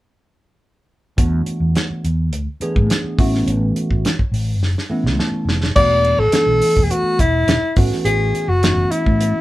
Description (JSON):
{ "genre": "electric jazz fusion", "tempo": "105 BPM", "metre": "4/4", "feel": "straight", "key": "unclear", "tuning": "A4 = 435 Hz", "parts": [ { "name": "tine electric piano", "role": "accompaniment", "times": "1.2-9.4 s", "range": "E3 to A5", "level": "-22 LUFS", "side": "right 1 dB", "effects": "phaser" }, { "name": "mellow fretless electric bass", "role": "bass", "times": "1.2-9.4 s", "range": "E1 to A2", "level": "-19 LUFS", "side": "equal", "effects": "none" }, { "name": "damped 70s drum kit", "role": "drums", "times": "1.2-9.3 s", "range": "crash cymbal, hi-hat, kick drum, snare drum", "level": "-19 LUFS", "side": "equal", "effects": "none" }, { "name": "breathy alto saxophone", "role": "melody", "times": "5.8-9.4 s", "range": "E4 to D5", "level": "-16 LUFS", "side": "left 1 dB", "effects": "none" } ], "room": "light reverb", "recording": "band playing live in one room", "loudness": "-15 LUFS", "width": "side -16 dB against mid", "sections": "1.2-5.8 A section; 5.8-9.4 B section", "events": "drum fill 4.6-5.8; tine electric piano fill 4.9-5.8", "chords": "1.2 E9sus4; 3.2 A69; 5.8 E9sus4; 7.8 A69", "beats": "| 1.18 1.76 2.33 2.90 | 3.48 4.05 4.62 5.19 | 5.76 6.34 6.91 7.48 | 8.05 8.63 9.20" }